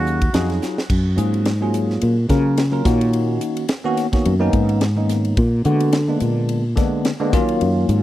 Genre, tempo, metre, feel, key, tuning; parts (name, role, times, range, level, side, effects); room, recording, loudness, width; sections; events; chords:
electric jazz fusion; 107 BPM; 4/4; swing 56% on 16ths; A4 = 441 Hz
trumpet with plunger mute; melody; 0.0-0.6 s; Gb4; -29 LUFS; right 2 dB; tape echo
bell-like tine electric piano; accompaniment; 0.0-8.0 s; D3 to F5; -21 LUFS; left 1 dB; medium stereo tremolo, wide subtle chorus
fretless electric bass; bass; 0.0-8.0 s; Eb2 to D3; -18 LUFS; equal
crisp fusion drum kit; drums; 0.1-8.0 s; crash cymbal, hi-hat, kick drum, ride cymbal, snare drum; -22 LUFS; equal
small room ambience; dry, close 1970s-style studio recording; -16 LUFS; side -14 dB against mid
0.9-8.0 A section
drum fill 0.6; fretless electric bass solo 0.9-8.0
0.0 Ebm11; 0.9 Gbmaj9; 2.9 Bmaj9; 5.4 Bb7b9b13; 7.3 Ebm9